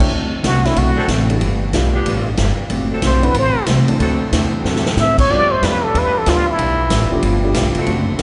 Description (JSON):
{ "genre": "jazz, big band swing", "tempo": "186 BPM", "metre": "4/4", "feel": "swing 64% on 8ths", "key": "unclear", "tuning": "A4 = 440 Hz", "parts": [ { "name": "warm concert grand piano", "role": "accompaniment", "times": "0.0-7.9 s", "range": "E3 to A4", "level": "-26 LUFS", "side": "equal", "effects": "none" }, { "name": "upright bass", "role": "bass", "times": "0.0-8.2 s", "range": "F1 to A2", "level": "-21 LUFS", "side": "equal", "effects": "none" }, { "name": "swinging big-band drum kit", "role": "drums", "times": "0.0-8.2 s", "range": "crash cymbal, hi-hat, kick drum, ride cymbal, snare drum", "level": "-24 LUFS", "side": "equal", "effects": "none" }, { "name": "vintage hollow-body jazz guitar", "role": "accompaniment", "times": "0.1-8.2 s", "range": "D3 to B4", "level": "-25 LUFS", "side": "equal", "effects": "none" }, { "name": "trumpet with plunger mute", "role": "melody", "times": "0.5-7.2 s", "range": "E4 to E5", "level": "-22 LUFS", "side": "equal", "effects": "none" }, { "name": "bright saxophone section", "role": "sustained chords", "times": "1.0-8.2 s", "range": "D3 to A4", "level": "-30 LUFS", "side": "equal", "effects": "none" } ], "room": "wet cathedral reverb, RT60 6.4 s", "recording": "recorded in a church or concert hall, nothing above 10.5 kHz", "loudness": "-16 LUFS", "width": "mono", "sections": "0.1-8.2 A section", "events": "muted trumpet solo 0.1-8.2; drum fill 4.6-5.0", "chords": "0.1 D7; 1.4 G7; 2.7 D7; 5.3 G7" }